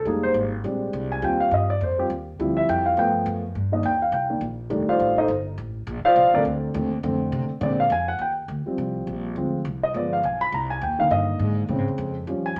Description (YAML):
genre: jazz, big band swing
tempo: 206 BPM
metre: 4/4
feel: swing 60% on 8ths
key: Bb major, Eb major from 8.2 s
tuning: A4 = 440 Hz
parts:
  - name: dark concert grand piano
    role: accompaniment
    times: 0.0-12.6 s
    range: Db3 to B5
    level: -24 LUFS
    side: equal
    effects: none
  - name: upright bass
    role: bass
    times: 0.0-12.6 s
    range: F1 to C3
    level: -32 LUFS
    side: equal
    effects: none
room: wet studio reverb, RT60 0.8 s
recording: none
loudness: -24 LUFS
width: mono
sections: 0.0-8.2 A section; 8.2-12.6 A section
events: grand piano solo 0.0-12.6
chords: 0.1 Fm11; 0.6 Bb13; 1.2 Eb69; 2.4 Dm11; 3.0 G7; 3.5 Cm9; 4.7 F13; 5.9 Bbmaj9; 7.6 Bb7; 8.2 Eb6; 9.4 Dm7b5; 9.9 G7b9; 10.5 Cm7; 11.7 Bbm7